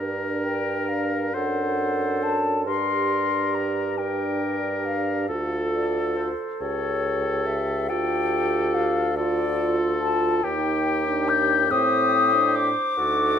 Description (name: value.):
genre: classical, slow romantic movement for wind quintet.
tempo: 46 BPM (dotted quarters).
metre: 6/8.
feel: rubato.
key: G minor.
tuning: A4 = 442 Hz.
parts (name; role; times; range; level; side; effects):
clear oboe; second line; 0.0-13.4 s; F#4 to C5; -29 LUFS; left 2 dB; none.
mellow French horn; accompaniment; 0.0-13.4 s; C4 to G4; -29 LUFS; equal; none.
warm clarinet; accompaniment; 0.0-13.4 s; Eb4 to C5; -30 LUFS; right 8 dB; none.
mellow bassoon; bass; 0.0-13.4 s; C#2 to A2; -28 LUFS; right 3 dB; none.
mellow concert flute; melody; 0.4-13.4 s; C5 to G6; -25 LUFS; left 6 dB; none.
room: moderate recital hall reverb, RT60 1.6 s.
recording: close, detailed microphones.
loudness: -21 LUFS.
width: side -8 dB against mid.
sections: 0.0-13.4 A section.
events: none.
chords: 0.0 Gm; 1.3 D7/F#; 2.7 Gm; 5.3 Dm; 6.6 A7/C#; 7.9 Dm; 10.4 Eb; 11.7 Am7b5.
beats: 1.35 | 2.67 3.98 | 5.29 6.61 | 7.89 9.17 | 10.44 11.71 | 12.99.